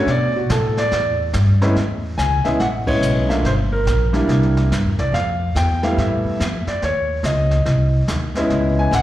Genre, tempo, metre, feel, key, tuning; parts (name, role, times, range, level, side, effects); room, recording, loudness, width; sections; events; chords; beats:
jazz piano trio; 142 BPM; 4/4; swing 64% on 8ths; A4 = 440 Hz
warm concert grand piano; melody; 0.0-9.0 s; A2 to G#5; -20 LUFS; equal; slapback echo
upright bass; bass; 0.1-9.0 s; G1 to B2; -19 LUFS; equal
jazz brush drum kit; drums; 0.1-9.0 s; brushed snare drum, hi-hat, kick drum, ride cymbal, snare drum; -27 LUFS; equal; slapback echo
light reverb; live gig heard through the venue's PA, recital hall reverb; -16 LUFS; side -14 dB against mid
0.0-1.8 A section; 1.8-9.0 B section
grand piano solo 0.0-1.8; band accent 2.8
0.1 Bm7; 0.9 N.C.; 1.8 Amaj9; 3.4 Gm; 4.3 C9; 5.1 Fmaj9#11; 6.8 C#sus2; 7.7 G# (rootless); 8.5 C#m7
| 0.08 0.50 0.92 1.34 | 1.76 2.19 2.61 3.03 | 3.45 3.87 4.29 4.71 | 5.13 5.56 5.98 6.40 | 6.82 7.24 7.67 8.09 | 8.51 8.93